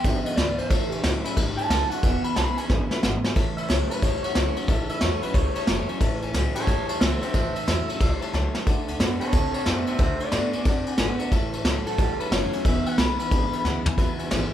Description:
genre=rockabilly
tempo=181 BPM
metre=4/4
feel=swing 64% on 8ths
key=A major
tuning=A4 = 440 Hz
part: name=electric guitar through a small old amp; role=melody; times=0.0-14.2 s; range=E4 to B5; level=-29 LUFS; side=left 1 dB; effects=spring reverb
part: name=picked steel-string acoustic guitar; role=accompaniment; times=0.0-14.5 s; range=E2 to F#4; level=-35 LUFS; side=left 4 dB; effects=none
part: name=warm upright piano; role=accompaniment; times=0.0-14.4 s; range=B4 to B5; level=-37 LUFS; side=left 5 dB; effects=none
part: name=electric guitar through a small old amp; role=riff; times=0.0-14.5 s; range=E2 to C4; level=-31 LUFS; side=right 3 dB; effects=none
part: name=upright bass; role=bass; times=0.0-14.5 s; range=E1 to A2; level=-29 LUFS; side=equal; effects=none
part: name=vintage brush drum kit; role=drums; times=0.0-14.4 s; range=kick drum, ride cymbal, snare drum, toms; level=-24 LUFS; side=equal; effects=none
room=light reverb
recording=band playing live in one room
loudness=-21 LUFS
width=side -11 dB against mid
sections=0.0-3.4 A section; 3.4-14.5 B section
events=clean electric guitar solo 0.0-3.4; drum fill 2.7-3.4, 8.3-8.7, 13.6-14.0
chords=0.0 E; 0.7 A; 2.0 E; 3.4 A; 8.7 D; 11.3 A; 12.7 E

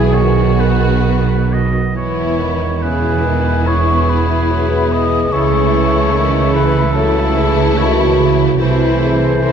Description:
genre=classical, slow romantic movement for symphony orchestra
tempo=65-75 BPM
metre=4/4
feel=rubato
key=E major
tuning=A4 = 441 Hz
part: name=warm studio violin section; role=melody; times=0.0-9.5 s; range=E4 to G#4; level=-22 LUFS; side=left 6 dB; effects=none
part: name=clear clarinet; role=second line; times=0.0-9.5 s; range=E4 to D#5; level=-26 LUFS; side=left 3 dB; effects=none
part: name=mellow hollow concert flute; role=second line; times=0.0-9.5 s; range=E5 to D#6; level=-22 LUFS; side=left 3 dB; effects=none
part: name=rich studio violin section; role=second line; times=0.0-9.5 s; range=A3 to E4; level=-24 LUFS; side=left 4 dB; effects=none
part: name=warm oboe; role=second line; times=0.0-9.5 s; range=G#4 to D#5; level=-24 LUFS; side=right 1 dB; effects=none
part: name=dark studio viola section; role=accompaniment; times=0.0-9.5 s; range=D#3 to E3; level=-25 LUFS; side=right 1 dB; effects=none
part: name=mellow bassoon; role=accompaniment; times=0.0-9.5 s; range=C#3 to F#3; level=-24 LUFS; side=right 2 dB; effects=none
part: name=dark French horn section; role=sustained chords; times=0.0-9.5 s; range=E4 to A4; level=-19 LUFS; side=left 3 dB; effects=none
part: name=rich studio cello section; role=bass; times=0.0-9.5 s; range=E2 to C#3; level=-18 LUFS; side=right 4 dB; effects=none
part: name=warm studio double bass section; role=bass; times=0.0-9.5 s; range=E1 to C#2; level=-18 LUFS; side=right 4 dB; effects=none
room=moderate concert hall reverb, RT60 2.2 s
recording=dark, warm production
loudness=-12 LUFS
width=side -7 dB against mid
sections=0.0-9.5 A section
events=none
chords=0.1 B; 1.9 E; 5.3 A/C#; 8.6 Am/C

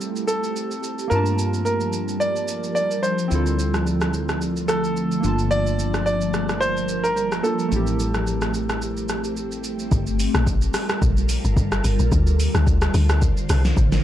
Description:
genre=amapiano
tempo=109 BPM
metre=4/4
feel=swing 55% on 16ths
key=G dorian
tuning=A4 = 440 Hz
part: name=warm concert grand piano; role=melody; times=0.0-9.6 s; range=A4 to D5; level=-25 LUFS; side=right 1 dB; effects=tape echo
part: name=warm analog keys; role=accompaniment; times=0.0-9.9 s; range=A3 to A5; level=-29 LUFS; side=right 2 dB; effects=chorus
part: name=ethereal airy pad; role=sustained chords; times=0.0-14.0 s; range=D3 to A5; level=-26 LUFS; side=equal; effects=ensemble chorus, built-in reverb, phaser
part: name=deep house drum kit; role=drums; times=0.0-14.0 s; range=hi-hat, kick drum, rim click, shaker, snare drum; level=-25 LUFS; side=equal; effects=none
part: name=woody fretless electric bass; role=bass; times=1.1-9.9 s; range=G1 to G2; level=-26 LUFS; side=equal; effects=ensemble chorus
part: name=deep log drum bass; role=bass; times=9.9-14.0 s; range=G1 to D2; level=-19 LUFS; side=equal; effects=none
room=little or no reverb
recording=dry, gritty hardware recording, cassette tape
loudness=-19 LUFS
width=side -12 dB against mid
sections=0.0-9.9 A section; 9.9-14.0 B section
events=drop 9.9-14.0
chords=0.0 Am7; 1.1 Gm9; 3.3 Dm7; 5.2 Gm9; 7.7 Am7; 9.9 Gm9; 12.1 Dm7

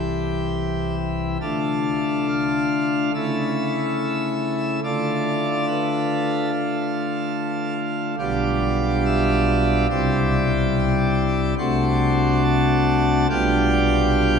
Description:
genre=classical, chorale-style piece for pipe organ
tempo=71 BPM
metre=4/4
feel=straight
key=unclear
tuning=A4 = 440 Hz
part: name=pipe organ, plenum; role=solo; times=0.0-14.4 s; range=B1 to A5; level=-19 LUFS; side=equal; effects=none
room=wet cathedral reverb, RT60 5.4 s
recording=minimal, uncompressed stereo recording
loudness=-19 LUFS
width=side -6 dB against mid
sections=0.0-14.4 A section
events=none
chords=0.0 C; 1.4 Dm; 3.2 A/C#; 4.8 Dm; 8.2 G7/B; 9.9 C; 11.6 D7/C; 13.3 G7/B

